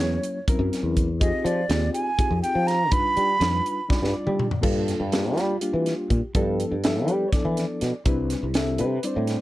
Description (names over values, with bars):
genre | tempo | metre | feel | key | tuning
electric jazz fusion | 245 BPM (eighths) | 7/8 | straight | unclear | A4 = 440 Hz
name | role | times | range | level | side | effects
mellow silver concert flute | melody | 0.0-4.1 s | C#5 to B5 | -24 LUFS | right 2 dB | slapback echo
reed electric piano | accompaniment | 0.0-9.4 s | F3 to E5 | -28 LUFS | left 1 dB | fast tremolo
sustaining fretless electric bass | bass | 0.0-9.3 s | C2 to G3 | -25 LUFS | equal | lush chorus
crisp fusion drum kit | drums | 0.2-9.4 s | crash cymbal, hi-hat, kick drum, snare drum, toms | -26 LUFS | equal | none
room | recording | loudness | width
light reverb | dark, warm production | -21 LUFS | side -16 dB against mid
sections
0.0-4.6 A section; 4.6-9.4 B section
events
drum fill 3.9-4.6; reed electric piano fill 3.9-4.6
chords
0.0 F#7#11; 1.2 Fm9; 2.9 G7b13; 4.6 Gm9; 6.3 G13; 8.1 Cmaj9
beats
0.23 0.47 0.72 0.96 | 1.21 1.45 1.70 1.94 2.19 2.43 2.67 | 2.92 3.16 3.41 3.65 3.90 4.14 4.39 | 4.63 4.88 5.12 5.37 5.61 5.86 6.10 | 6.35 6.59 6.83 7.08 7.33 7.57 7.82 | 8.06 8.30 8.55 8.79 9.04 9.29